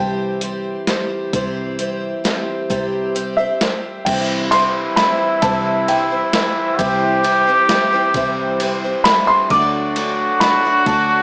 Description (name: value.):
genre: indie folk with a building arrangement.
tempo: 132 BPM.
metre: 3/4.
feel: straight.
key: unclear.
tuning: A4 = 440 Hz.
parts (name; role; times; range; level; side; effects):
dark upright piano; melody; 0.0-0.4, 3.4-6.5, 9.0-11.2 s; E5 to D6; -20 LUFS; equal; none.
picked twelve-string acoustic guitar; accompaniment; 0.0-11.2 s; C3 to D5; -24 LUFS; equal; slapback echo.
fingered electric bass; bass; 0.0-11.2 s; C2 to D2; -30 LUFS; equal; none.
boom bap sampler-style drum kit; drums; 0.4-11.0 s; crash cymbal, hi-hat, kick drum, ride cymbal, snare drum; -25 LUFS; equal; none.
trombone with straight mute; second line; 4.1-11.2 s; E4 to G4; -20 LUFS; equal; none.
pedal harmonium; sustained chords; 4.1-11.2 s; E3 to D4; -31 LUFS; equal; none.
room: wet recital hall reverb, RT60 1.3 s, small room ambience.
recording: big arena sound, small speaker sound.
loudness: -17 LUFS.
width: mono.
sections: 0.0-4.1 A section; 4.1-11.2 B section.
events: none.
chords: 0.0 C; 9.5 D.